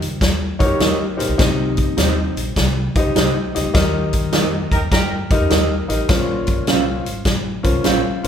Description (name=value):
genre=uptempo 1960s-style soul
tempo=102 BPM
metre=4/4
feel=swing 66% on 8ths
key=unclear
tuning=A4 = 440 Hz
part: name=warm upright piano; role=accompaniment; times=0.0-8.3 s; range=Bb2 to Eb5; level=-22 LUFS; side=left 2 dB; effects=none
part: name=upright bass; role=bass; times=0.0-8.3 s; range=Ab1 to G2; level=-24 LUFS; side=equal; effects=none
part: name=swinging big-band drum kit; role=drums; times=0.0-8.3 s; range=hi-hat, kick drum, snare drum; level=-18 LUFS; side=equal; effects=none
part: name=mellow electric guitar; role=stabs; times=0.8-8.0 s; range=Db4 to F5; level=-23 LUFS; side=right 5 dB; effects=none
part: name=dark horn section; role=second line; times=4.7-5.2 s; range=Eb4 to Bb4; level=-24 LUFS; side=right 1 dB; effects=none
room=moderate large studio reverb, RT60 1.4 s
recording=band playing live in one room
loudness=-15 LUFS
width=side -8 dB against mid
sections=0.0-8.3 A section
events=band accent 3.7-6.1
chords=0.0 Eb; 1.4 Cm; 3.7 Eb; 6.1 Bbmadd9